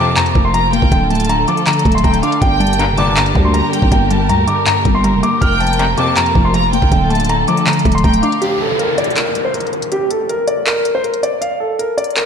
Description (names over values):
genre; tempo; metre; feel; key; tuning
hip hop, trap; 160 BPM; 4/4; half-time; G minor; A4 = 439 Hz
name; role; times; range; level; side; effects
dark concert grand piano; melody; 0.0-12.3 s; G4 to F6; -17 LUFS; equal; low-pass filter, tape echo
warm studio violin section; second line; 0.0-8.4 s; F5 to Bb5; -23 LUFS; equal; tape echo
glassy wavetable pluck; accompaniment; 0.0-8.4 s; F2 to D4; -18 LUFS; equal; chorus, low-pass filter
dark symphonic string section; sustained chords; 0.0-8.4 s; C3 to Bb4; -22 LUFS; equal; none
bright brass ensemble; stabs; 0.0-0.3, 2.8-3.3, 5.8-6.3 s; F2 to D3; -23 LUFS; left 3 dB; tape echo
trap drum kit; drums; 0.2-12.3 s; handclaps, hi-hat, kick drum; -17 LUFS; equal; none
growling 808-style bass; bass; 0.4-8.2 s; D1 to D2; -18 LUFS; equal; none
downlifter; sound effects; 8.4-11.4 s; none; -23 LUFS; right 1 dB; none
room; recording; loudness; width
moderate lush hall reverb, RT60 1.9 s, studio reverb; dreamy mix soaked in reverb; -12 LUFS; side -7 dB against mid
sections
0.0-8.4 A section; 8.4-12.3 B section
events
break 8.4-12.3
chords
0.0 Fsus4; 0.9 Dm; 2.4 Gm; 5.4 Fsus4; 6.9 Dm; 8.4 N.C.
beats
0.17 0.54 | 0.92 1.29 1.67 2.04 | 2.42 2.79 3.17 3.54 | 3.92 4.29 4.67 5.04 | 5.42 5.79 6.17 6.54 | 6.92 7.29 7.67 8.04 | 8.42 8.79 9.17 9.54 | 9.92 10.29 10.67 11.04 | 11.42 11.79 12.17